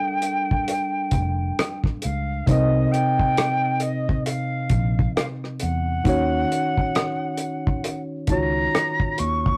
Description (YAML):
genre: R&B, neo-soul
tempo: 67 BPM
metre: 4/4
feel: swing 60% on 16ths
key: unclear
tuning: A4 = 440 Hz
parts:
  - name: silver concert flute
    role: melody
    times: 0.0-9.6 s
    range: Eb5 to Db6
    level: -28 LUFS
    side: equal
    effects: none
  - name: tine electric piano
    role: accompaniment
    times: 0.0-9.6 s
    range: C3 to F5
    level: -28 LUFS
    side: equal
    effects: none
  - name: cloth-damped thuddy drum kit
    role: drums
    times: 0.2-9.6 s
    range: hi-hat, kick drum, rim click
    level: -26 LUFS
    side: equal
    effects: none
  - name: vintage muted fingered electric bass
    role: bass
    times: 1.1-9.6 s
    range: F1 to E2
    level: -27 LUFS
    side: equal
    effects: none
room: moderate studio reverb, RT60 0.5 s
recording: rough rehearsal-room recording, warm saturation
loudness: -23 LUFS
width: mono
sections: 0.0-9.6 A section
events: none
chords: 0.0 Gm9; 2.5 Cm7; 6.1 Ebm9